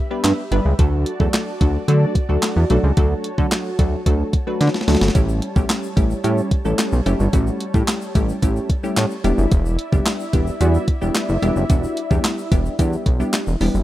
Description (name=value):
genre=dance-pop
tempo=110 BPM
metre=4/4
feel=straight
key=D major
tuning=A4 = 439 Hz
part: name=warm analog pad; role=sustained chords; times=0.0-13.8 s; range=G3 to B5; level=-29 LUFS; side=right 1 dB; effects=wide subtle chorus, sidechain pumping
part: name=wavetable chord stab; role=accompaniment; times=0.1-13.8 s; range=F#3 to B4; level=-23 LUFS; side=equal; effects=sidechain pumping
part: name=chorused synth bass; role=bass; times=0.2-13.8 s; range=E1 to D3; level=-18 LUFS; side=equal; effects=sidechain pumping
part: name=crisp 8-bit digital drum machine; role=drums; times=0.2-13.7 s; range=handclaps, hi-hat, kick drum, snare drum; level=-19 LUFS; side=equal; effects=overdrive
part: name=tube shaker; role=percussion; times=5.2-13.8 s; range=none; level=-43 LUFS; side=left 6 dB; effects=none
room=little or no reverb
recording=rough home demo mix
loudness=-16 LUFS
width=side -14 dB against mid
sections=0.0-13.8 A section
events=drum fill 4.6-5.2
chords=0.0 G; 0.8 D; 5.2 A7; 9.2 Em7